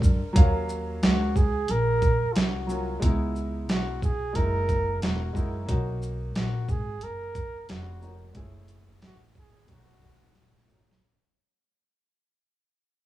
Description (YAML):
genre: hip hop, jazz-hop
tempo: 90 BPM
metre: 4/4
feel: swing 66% on 16ths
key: Eb minor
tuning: A4 = 440 Hz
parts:
  - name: warm upright piano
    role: accompaniment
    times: 0.0-11.0 s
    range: D3 to F5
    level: -32 LUFS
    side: equal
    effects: none
  - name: upright bass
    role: bass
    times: 0.0-11.0 s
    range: Fb1 to Gb2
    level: -29 LUFS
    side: equal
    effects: none
  - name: boom bap sampler-style drum kit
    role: drums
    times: 0.0-11.0 s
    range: hi-hat, kick drum, shaker, snare drum, toms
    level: -23 LUFS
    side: equal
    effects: none
  - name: mellow flugelhorn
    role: melody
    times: 1.0-10.7 s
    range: F4 to Bb4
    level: -31 LUFS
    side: right 2 dB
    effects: none
room: small room ambience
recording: rough home demo mix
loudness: -23 LUFS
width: side -15 dB against mid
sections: 0.4-11.0 A section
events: fade-out 0.4-11.0; drum fill 10.4-11.0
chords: 0.4 Ebm9; 3.0 Dbm7; 4.4 Gb13; 5.7 Bmaj9; 8.4 Gbm7; 9.7 B7